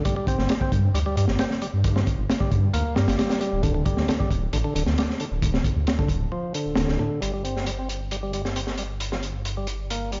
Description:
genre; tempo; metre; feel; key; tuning
breakbeat, breaks; 134 BPM; 4/4; straight; G minor; A4 = 440 Hz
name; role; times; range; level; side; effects
percussive tonewheel organ; riff; 0.0-10.2 s; C3 to C4; -32 LUFS; equal; overdrive, low-pass filter, dub echo
crunchy breakbeat drum kit; drums; 0.1-10.2 s; hi-hat, kick drum, snare drum; -28 LUFS; equal; high-pass filter on kick, high-pass filter on hats, high-pass filter on snare, high-pass filter on room
dark detuned saw bass; bass; 0.4-10.2 s; D1 to A2; -28 LUFS; equal; none
room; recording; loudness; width
light reverb, small room reverb; played on a big sound system in a bare room, large studio reverb, nothing above 7.5 kHz; -24 LUFS; mono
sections
0.0-7.2 A section; 7.2-10.2 B section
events
none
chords
0.1 N.C.; 7.2 Gm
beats
| 0.05 0.50 0.95 1.40 | 1.84 2.29 2.74 3.19 | 3.63 4.08 4.53 4.98 | 5.42 5.87 6.32 6.77 | 7.22 7.66 8.11 8.56 | 9.01 9.46 9.90

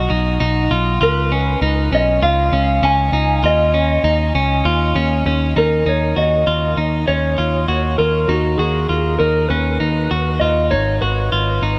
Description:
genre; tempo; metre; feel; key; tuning
dream pop; 99 BPM; 4/4; straight; Eb minor; A4 = 437 Hz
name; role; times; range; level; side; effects
electric slide guitar; melody; 0.0-11.8 s; Gb4 to Ab5; -22 LUFS; equal; shimmer reverb, tape echo
clean electric guitar; arpeggios; 0.0-11.8 s; Db4 to F#4; -22 LUFS; equal; subtle chorus, shimmer reverb, tape echo
picked electric bass; bass; 0.0-11.8 s; Ab1 to Eb2; -21 LUFS; equal; none
room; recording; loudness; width
moderate huge ambient reverb, RT60 7.4 s; none; -17 LUFS; mono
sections
0.0-5.9 A section; 5.9-11.8 B section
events
none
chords
0.0 B(#11); 1.0 Db7; 3.4 Ebsus2; 5.9 Ebm7; 10.7 Abm7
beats
0.41 | 1.02 1.62 2.23 2.83 | 3.44 4.05 4.65 5.26 | 5.87 6.47 7.08 7.68 | 8.29 8.89 9.50 10.11 | 10.71 11.32

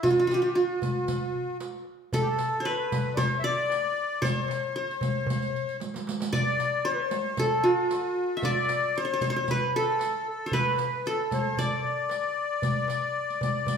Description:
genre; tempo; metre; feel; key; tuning
Arabic maqam ensemble; 114 BPM; 4/4; straight; D maqam rast; A4 = 440 Hz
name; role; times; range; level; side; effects
qanun; melody; 0.0-13.8 s; E4 to E5; -27 LUFS; right 2 dB; none
accordion; second line; 0.0-13.8 s; F#4-50c to E5; -29 LUFS; left 4 dB; light tremolo tuning
darbuka; percussion; 0.0-13.8 s; none; -32 LUFS; left 1 dB; none
riq; percussion; 0.1-13.8 s; none; -36 LUFS; right 5 dB; none
room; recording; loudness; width
wet large studio reverb, RT60 1.3 s; band playing live in one room; -25 LUFS; side -6 dB against mid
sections
0.0-13.8 A section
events
drum fill 5.8-6.3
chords
none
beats
| 0.04 0.57 1.09 1.61 | 2.14 2.66 3.19 3.71 | 4.23 4.75 5.28 5.80 | 6.33 6.85 7.38 7.90 | 8.43 8.95 9.47 10.00 | 10.52 11.05 11.57 12.10 | 12.62 13.15 13.68

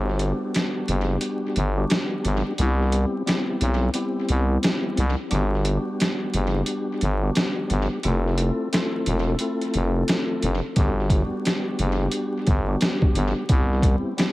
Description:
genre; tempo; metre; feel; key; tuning
hip hop, boom-bap hip-hop; 88 BPM; 4/4; swing 62% on 16ths; G major; A4 = 444 Hz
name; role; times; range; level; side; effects
percussive tonewheel organ; accompaniment; 0.0-14.3 s; G3 to A4; -26 LUFS; left 1 dB; chorus vibrato, cassette tape, high-pass filter, low-pass filter, tape echo
growling FM bass; bass; 0.0-14.0 s; E1 to C2; -22 LUFS; equal; none
trip hop sampler-style drum kit; drums; 0.2-14.3 s; hi-hat, kick drum, snare drum; -24 LUFS; equal; overdrive, tape echo
room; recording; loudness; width
light reverb; echo-heavy mix, vinyl crackle; -21 LUFS; side -18 dB against mid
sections
0.0-14.3 A section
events
break 0.0-10.8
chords
0.0 Gmaj7; 2.6 Cmaj7; 5.3 Gmaj7; 8.0 Fmaj7; 10.8 Gmaj7; 13.5 Cmaj7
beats
0.54 1.22 1.90 | 2.58 3.27 3.95 4.63 | 5.31 5.99 6.68 7.36 | 8.04 8.72 9.40 10.09 | 10.77 11.45 12.13 12.81 | 13.49 14.18

